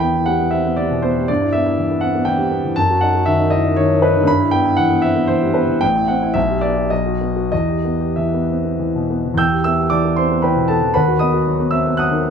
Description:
classical, romantic character piece for solo piano; 92-124 BPM; 3/4; rubato; E minor; A4 = 439 Hz
warm concert grand piano; solo; 0.0-12.3 s; A1 to G6; -15 LUFS; equal
light reverb; -15 LUFS; side -7 dB against mid
0.0-9.4 A section; 9.4-12.3 A section
0.0 Em; 1.3 Em/G; 2.8 F#m6; 4.3 Em/G; 5.8 Am; 6.4 Em/B; 6.9 B; 7.5 Em; 10.9 B/D#

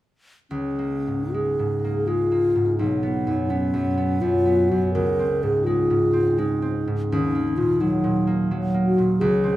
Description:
classical, impressionist duo for alto flute and harp; 69-87 BPM; 3/4; rubato; Db mixolydian; A4 = 441 Hz
mellow hollow wooden-headed alto flute; melody; 0.5-9.6 s; Db4 to Bb4; -22 LUFS; left 1 dB
concert harp; accompaniment; 0.5-9.6 s; Cb2 to C4; -22 LUFS; right 1 dB
moderate recital hall reverb, RT60 1.6 s; minimal, uncompressed stereo recording; -19 LUFS; side -15 dB against mid
0.5-9.6 A section
0.5 Db6; 2.8 Cbadd9; 4.9 Dbmaj7; 7.1 Ebm

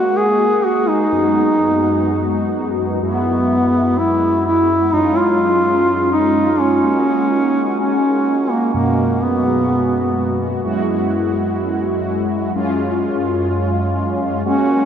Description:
pop; 126 BPM; 4/4; straight; F# major; A4 = 441 Hz
dark duduk; melody; 0.0-10.4, 14.5-14.9 s; A#3 to G#4; -16 LUFS; equal; diffuse ambient delay
mellow synth brass; accompaniment; 0.0-14.9 s; F#2 to F#4; -18 LUFS; equal; chorus, phaser
wet huge ambient reverb, RT60 7.9 s; dreamy mix soaked in reverb, nothing above 7.9 kHz, faint mains hum; -14 LUFS; side -8 dB against mid
0.0-6.8 A section; 6.8-14.5 B section
0.0 F#add9; 1.1 G#m7/F#; 3.0 Eadd9/F#; 4.9 C#/F#; 6.8 F#add9; 8.7 G#m7/F#; 10.6 Eadd9/F#; 12.6 C#/F#

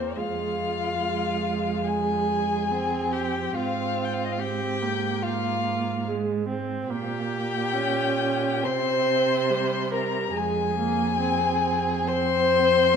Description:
classical, slow romantic movement for string quartet; 71 BPM; 4/4; rubato; F minor; A4 = 441 Hz
muted violin; melody; 0.0-13.0 s; C5 to C6; -29 LUFS; left 8 dB
muted violin; second line; 0.0-13.0 s; C4 to C5; -27 LUFS; left 3 dB
muted viola; accompaniment; 0.0-13.0 s; G3 to Db4; -28 LUFS; right 4 dB
muted cello; bass; 0.0-13.0 s; E2 to C3; -31 LUFS; right 7 dB
wet recital hall reverb, RT60 1.4 s; minimal, uncompressed stereo recording; -23 LUFS; side -7 dB against mid
0.0-13.0 A section
0.2 Fm; 3.6 Fm/Ab; 6.9 Gdim/Bb; 8.7 C5; 10.4 Fm; 12.1 F5

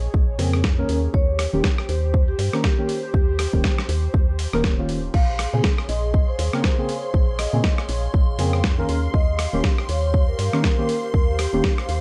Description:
deep house; 120 BPM; 4/4; swing 58% on 16ths; A4 = 440 Hz
woody FM bass; bass; 0.0-12.0 s; Eb1 to Bb2; -26 LUFS; equal; tube saturation, sidechain pumping
airy breathy pad; texture; 0.0-12.0 s; G4 to F5; -36 LUFS; equal; chorus, sidechain pumping
electronic kick drum; drums; 0.1-11.8 s; -22 LUFS; equal
deep mellow chord stab; stabs; 0.4-11.6 s; Db3 to Bb4; -28 LUFS; equal; chorus, phaser, sidechain pumping, analog delay
dusty soul sampler-style drum kit; drums; 0.4-12.0 s; crash cymbal, hi-hat, rim click, snare drum; -30 LUFS; equal
vibraphone with soft mallets; melody; 1.1-11.7 s; G4 to F5; -31 LUFS; equal; tape echo
string machine, violins; texture; 5.1-12.0 s; C6; -39 LUFS; equal; ensemble chorus
little or no reverb; -21 LUFS; mono
0.0-12.0 A section
0.0 Bbm9; 0.9 Eb7; 5.1 Bbm9; 8.9 Eb7

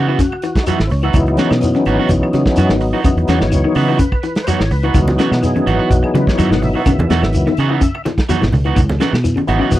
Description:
afrobeat; 126 BPM; 4/4; swing 53% on 16ths; C# minor; A4 = 440 Hz
overdriven tonewheel organ; accompaniment; 0.0-9.8 s; D#3 to F#5; -18 LUFS; left 1 dB; slow rotary speaker, chorus vibrato
electric guitar through a small old amp; arpeggios; 0.0-9.8 s; B2 to F#3; -21 LUFS; left 4 dB
electric guitar at the edge of break-up; stabs; 0.0-9.8 s; E3 to F#4; -21 LUFS; right 8 dB
fingered electric bass; bass; 0.0-9.8 s; G#1 to C#3; -16 LUFS; equal
warm soul drum kit; drums; 0.2-9.8 s; hi-hat, kick drum, snare drum; -18 LUFS; equal
shekere; percussion; 0.2-9.8 s; -22 LUFS; equal
claves; percussion; 0.3-9.6 s; -35 LUFS; left 5 dB
congas; percussion; 5.0-9.8 s; -21 LUFS; right 2 dB
little or no reverb; dry, close 1970s-style studio recording; -12 LUFS; side -14 dB against mid
0.0-9.8 A section
tonewheel organ solo 0.0-9.8
0.0 C#m11

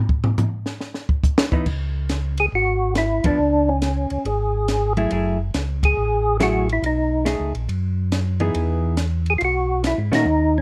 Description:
soul jazz organ trio; 140 BPM; 4/4; swing 66% on 8ths; C# minor; A4 = 440 Hz
compact cocktail drum kit; drums; 0.1-10.2 s; crash cymbal, hi-hat, kick drum, ride cymbal, snare drum, toms; -23 LUFS; equal
hollow-body jazz guitar; accompaniment; 1.5-10.3 s; D#3 to G#4; -26 LUFS; equal
mellow tonewheel organ; bass; 1.7-10.6 s; F#1 to A#2; -25 LUFS; equal; slow rotary speaker
percussive tonewheel organ; melody; 2.4-10.6 s; C#4 to G#4; -22 LUFS; equal; chorus vibrato, slow rotary speaker
light reverb; -21 LUFS; mono
0.0-1.7 A section; 1.7-10.6 B section
drum solo 0.0-1.7; band accent 3.2, 5.8, 10.1
0.0 N.C.; 0.8 E5; 1.7 C#5; 5.1 F#m9; 6.8 B13; 8.6 Emaj7

